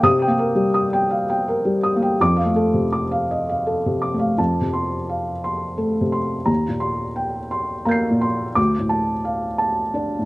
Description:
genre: neoclassical minimalist piano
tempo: 85 BPM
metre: 3/4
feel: rubato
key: unclear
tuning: A4 = 440 Hz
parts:
  - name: felt-muted upright piano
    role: solo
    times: 0.0-10.3 s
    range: D2 to C7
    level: -18 LUFS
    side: equal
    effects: none
room: little or no reverb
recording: recorded outdoors, with no room sound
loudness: -18 LUFS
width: side -20 dB against mid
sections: 0.0-4.4 A section; 4.4-10.3 B section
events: none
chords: 0.0 Cm7; 2.2 F6; 4.4 F; 6.5 Cm7/Eb; 8.6 Dm

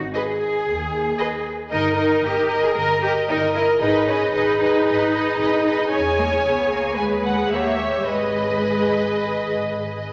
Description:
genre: quick classical-period movement for string orchestra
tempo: 113 BPM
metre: 4/4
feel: uneven beats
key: G# minor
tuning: A4 = 440 Hz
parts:
  - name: warm chamber double bass section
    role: bass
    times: 0.0-10.0 s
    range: G1 to E2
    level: -34 LUFS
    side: equal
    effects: none
  - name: warm studio violin section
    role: melody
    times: 0.1-10.1 s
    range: D#5 to G#5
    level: -28 LUFS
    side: equal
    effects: none
  - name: warm chamber viola section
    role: accompaniment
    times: 0.1-10.1 s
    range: G4 to A#4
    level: -27 LUFS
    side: equal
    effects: none
  - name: warm symphonic cello section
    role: bass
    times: 0.1-9.7 s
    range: G3 to A#4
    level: -26 LUFS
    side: equal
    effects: none
  - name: rich chamber violin section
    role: second line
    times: 0.2-10.1 s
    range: A#4 to C#5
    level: -26 LUFS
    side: equal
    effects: none
room: wet scoring stage reverb, RT60 1.7 s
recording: none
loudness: -20 LUFS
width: mono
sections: 0.0-10.1 A section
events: none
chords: 0.0 G#5; 1.7 D#/G; 3.8 G#m; 5.9 C#m/E; 7.0 G#m/D#; 7.5 D#7b9; 8.1 G#m

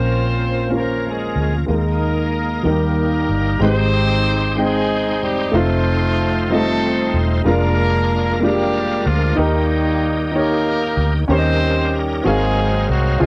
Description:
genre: gospel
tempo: 62 BPM (dotted quarters)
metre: 6/8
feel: straight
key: Ab major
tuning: A4 = 441 Hz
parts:
  - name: clear horn section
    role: melody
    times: 0.0-13.3 s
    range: Eb3 to C5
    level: -24 LUFS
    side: equal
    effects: cassette tape
  - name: warm grand piano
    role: accompaniment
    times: 0.0-13.3 s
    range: Ab2 to G5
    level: -22 LUFS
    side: equal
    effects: none
  - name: bright tonewheel organ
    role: sustained chords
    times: 0.0-13.3 s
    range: F3 to G5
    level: -29 LUFS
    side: equal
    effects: slow rotary speaker, overdrive, chorus vibrato
  - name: vintage muted fingered electric bass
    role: bass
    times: 0.0-13.3 s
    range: Fb1 to Eb2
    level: -23 LUFS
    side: equal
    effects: none
room: light reverb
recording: home recording on cassette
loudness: -18 LUFS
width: mono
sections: 0.0-3.6 A section; 3.6-13.3 B section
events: none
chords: 0.0 Bbm; 1.7 Ebsus4; 2.7 Eb; 3.6 Abmaj7; 5.5 F7; 7.5 Bb7/F; 9.4 Eb; 11.3 Eb7; 12.2 Ab13

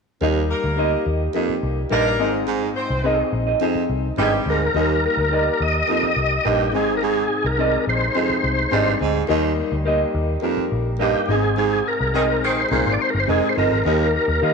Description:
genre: soul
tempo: 106 BPM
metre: 4/4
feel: straight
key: Eb major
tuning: A4 = 440 Hz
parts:
  - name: warm grand piano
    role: accompaniment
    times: 0.2-14.5 s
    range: Ab2 to F5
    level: -25 LUFS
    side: left 12 dB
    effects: none
  - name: warm French horn section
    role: sustained chords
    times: 0.2-14.5 s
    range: Bb2 to G4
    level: -32 LUFS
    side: equal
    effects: none
  - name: clear baritone saxophone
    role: riff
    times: 0.2-14.1 s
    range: Eb2 to Bb2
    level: -25 LUFS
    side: right 10 dB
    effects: none
  - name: vintage muted picked electric bass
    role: bass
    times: 0.2-14.5 s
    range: F1 to Eb3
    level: -24 LUFS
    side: left 1 dB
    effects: none
  - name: warm horn section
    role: second line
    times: 0.5-4.6, 12.1-12.6 s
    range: Eb3 to C5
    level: -26 LUFS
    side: left 1 dB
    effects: none
  - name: electric guitar through a small old amp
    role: stabs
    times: 0.8-14.5 s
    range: G4 to Eb5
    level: -26 LUFS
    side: right 10 dB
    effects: spring reverb
  - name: overdriven tonewheel organ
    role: melody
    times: 4.2-14.5 s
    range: G4 to Eb5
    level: -22 LUFS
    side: left 1 dB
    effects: chorus vibrato, fast rotary speaker, tape echo
room: moderate echo chamber reverb, RT60 2.2 s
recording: 1960s-style stereo with parts hard left and right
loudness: -18 LUFS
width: side -5 dB against mid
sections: 0.2-4.8 A section; 4.8-14.5 B section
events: band accent 11.6-13.9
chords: 0.2 Eb; 2.2 Ab; 4.8 Eb; 6.7 Ab; 9.3 Eb; 11.3 Ab; 13.9 Eb

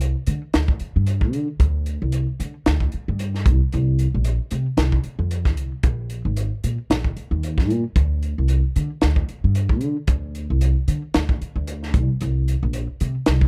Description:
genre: electric jazz fusion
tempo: 113 BPM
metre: 4/4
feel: swing 55% on 16ths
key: unclear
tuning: A4 = 442 Hz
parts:
  - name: upright bass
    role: bass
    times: 0.0-13.5 s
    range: G#1 to D3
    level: -23 LUFS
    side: equal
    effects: none
  - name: crisp fusion drum kit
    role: drums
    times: 0.0-13.5 s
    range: hi-hat, kick drum, snare drum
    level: -24 LUFS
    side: equal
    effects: none
room: little or no reverb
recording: none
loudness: -22 LUFS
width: mono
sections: 0.0-13.5 A section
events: none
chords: none

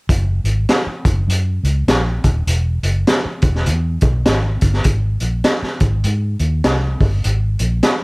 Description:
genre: uptempo 1960s-style soul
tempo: 101 BPM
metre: 4/4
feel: swing 60% on 8ths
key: unclear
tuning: A4 = 440 Hz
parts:
  - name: vintage muted fingered electric bass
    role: bass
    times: 0.1-7.8 s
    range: D#1 to G#2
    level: -17 LUFS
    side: equal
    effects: none
  - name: raw garage drum kit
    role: drums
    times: 0.1-8.0 s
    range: hi-hat, kick drum, snare drum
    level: -16 LUFS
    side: equal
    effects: none
room: little or no reverb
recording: cassette tape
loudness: -15 LUFS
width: side -28 dB against mid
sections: 0.1-8.0 A section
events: none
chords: none

